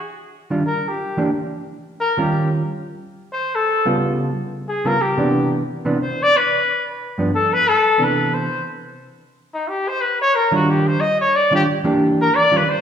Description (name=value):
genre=jazz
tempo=180 BPM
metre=4/4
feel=swing 62% on 8ths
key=C major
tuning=A4 = 437 Hz
part: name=hollow-body jazz guitar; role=accompaniment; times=0.5-8.5, 10.5-12.6 s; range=G2 to G4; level=-20 LUFS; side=right 1 dB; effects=none
part: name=warm trumpet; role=melody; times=0.7-12.8 s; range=Eb4 to Eb5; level=-18 LUFS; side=left 1 dB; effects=none
room=wet recital hall reverb, RT60 1.7 s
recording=recorded in a church or concert hall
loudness=-16 LUFS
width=side -8 dB against mid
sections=0.0-8.0 A section; 8.0-12.8 A section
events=trumpet solo 0.0-12.8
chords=0.0 Ebmaj9; 1.3 N.C.; 2.0 Eb9; 2.6 Dbaug; 4.0 Db7#11; 5.3 Cmaj9; 7.3 N.C.; 8.0 Cmaj9; 9.3 N.C.; 10.0 Ebmaj9; 12.0 Em7b5